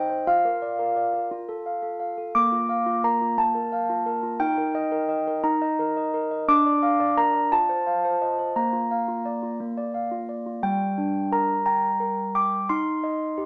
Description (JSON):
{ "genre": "classical, lullaby for handbells", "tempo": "58 BPM (dotted quarters)", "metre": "6/8", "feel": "straight", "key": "Bb major", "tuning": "A4 = 440 Hz", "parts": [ { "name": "handbells", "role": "solo", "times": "0.0-13.5 s", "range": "G3 to D6", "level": "-24 LUFS", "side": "equal", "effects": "none" } ], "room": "moderate studio reverb, RT60 0.8 s", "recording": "nothing above 10.9 kHz", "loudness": "-24 LUFS", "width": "mono", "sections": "0.0-10.6 A section; 10.6-13.5 B section", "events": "none", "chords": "0.3 Bb/F; 1.3 F; 2.3 Bb; 4.4 Eb; 6.5 Bb/D; 7.5 F7; 8.5 Bb; 10.6 Gm; 12.7 Cm/Eb" }